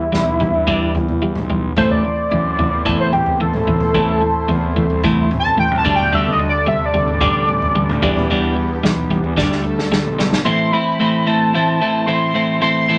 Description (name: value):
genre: indie rock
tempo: 110 BPM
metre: 4/4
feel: straight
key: A minor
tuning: A4 = 440 Hz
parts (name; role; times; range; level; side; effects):
- octave-doubled lead; melody; 0.0-13.0 s; E4 to C6; -21 LUFS; equal; chorus, phaser
- twelve-string electric guitar; riff; 0.0-13.0 s; A2 to E4; -20 LUFS; equal; none
- fuzz fingered electric bass; bass; 0.1-10.4 s; A1 to C3; -27 LUFS; equal; overdrive
- unplugged drum kit; drums; 0.1-10.4 s; kick drum, snare drum, toms; -24 LUFS; equal; none
- warm analog pad; sustained chords; 1.8-10.5 s; E3 to C5; -29 LUFS; equal; chorus, tremolo
room: moderate small room reverb, RT60 0.5 s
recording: none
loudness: -17 LUFS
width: mono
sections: 0.0-10.5 A section; 10.5-13.0 B section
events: analog synth lead solo 0.0-10.5; drum fill 9.4-10.5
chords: 0.0 Em7; 1.8 Am; 5.9 Dsus4; 8.0 Em7; 9.4 Dsus4; 10.5 Am